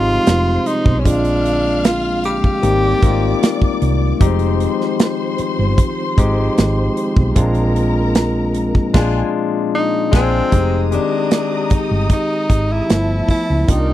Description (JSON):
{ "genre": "lush 1970s-style soul", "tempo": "76 BPM", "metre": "4/4", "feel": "straight", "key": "F dorian", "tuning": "A4 = 439 Hz", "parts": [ { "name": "breathy tenor saxophone", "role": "melody", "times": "0.0-3.8, 9.8-13.9 s", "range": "C4 to G4", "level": "-19 LUFS", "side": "equal", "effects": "none" }, { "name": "warm studio string section", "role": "second line", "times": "0.0-13.9 s", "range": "E4 to F6", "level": "-26 LUFS", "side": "left 1 dB", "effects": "none" }, { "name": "barky tine electric piano", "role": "accompaniment", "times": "0.0-13.9 s", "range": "Eb3 to G4", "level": "-20 LUFS", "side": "moving between left 12 dB and equal", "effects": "overdrive, auto-pan" }, { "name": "mellow tonewheel organ", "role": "sustained chords", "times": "0.0-10.5 s", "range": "Bb2 to G4", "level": "-26 LUFS", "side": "right 4 dB", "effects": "chorus vibrato, stopped rotary speaker" }, { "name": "hollow-body short-scale fingered electric bass", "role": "bass", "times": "0.0-13.9 s", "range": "F1 to Db2", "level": "-18 LUFS", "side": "equal", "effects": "none" }, { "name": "modern studio drum kit", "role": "drums", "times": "0.3-13.9 s", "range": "crash cymbal, hi-hat, kick drum, snare drum", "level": "-14 LUFS", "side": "right 1 dB", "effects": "none" } ], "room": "little or no reverb", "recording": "dry, close 1970s-style studio recording", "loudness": "-14 LUFS", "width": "side -13 dB against mid", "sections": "0.0-10.5 A section; 10.5-13.9 B section", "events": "band accent 8.9-10.5", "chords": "0.0 Fm7; 1.1 Bb7; 2.6 Abmaj7; 4.2 Fm7; 7.4 Bb7; 10.5 Fm9; 12.9 G13", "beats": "0.26 | 1.05 1.84 2.63 3.42 | 4.21 5.00 5.79 6.58 | 7.37 8.16 8.95 9.73 | 10.53 11.31 12.10 12.89 | 13.68" }